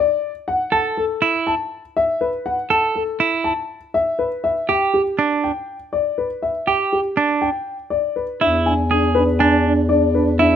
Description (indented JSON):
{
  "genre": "classical, minimalist pattern music",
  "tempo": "121 BPM",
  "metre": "4/4",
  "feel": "straight",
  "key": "unclear",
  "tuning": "A4 = 440 Hz",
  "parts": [
    { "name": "dark grand piano", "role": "melody", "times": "0.0-10.6 s", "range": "G4 to A5", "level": "-20 LUFS", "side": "left 4 dB", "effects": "none" },
    { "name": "clean electric guitar", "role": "arpeggios", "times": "0.7-10.6 s", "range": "D4 to A4", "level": "-18 LUFS", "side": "right 5 dB", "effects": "none" },
    { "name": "mellow French horn", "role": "second line", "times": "8.4-10.6 s", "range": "D4", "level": "-21 LUFS", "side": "right 4 dB", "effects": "none" },
    { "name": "mellow bass clarinet", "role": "bass", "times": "8.4-10.6 s", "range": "E2", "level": "-19 LUFS", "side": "left 1 dB", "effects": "none" }
  ],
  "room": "light reverb",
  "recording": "close, detailed microphones",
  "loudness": "-17 LUFS",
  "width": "side -9 dB against mid",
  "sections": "0.0-8.4 A section; 8.4-10.6 B section",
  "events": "none",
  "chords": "0.5 F#m7 (rootless); 4.4 Em7 (rootless); 8.4 E7"
}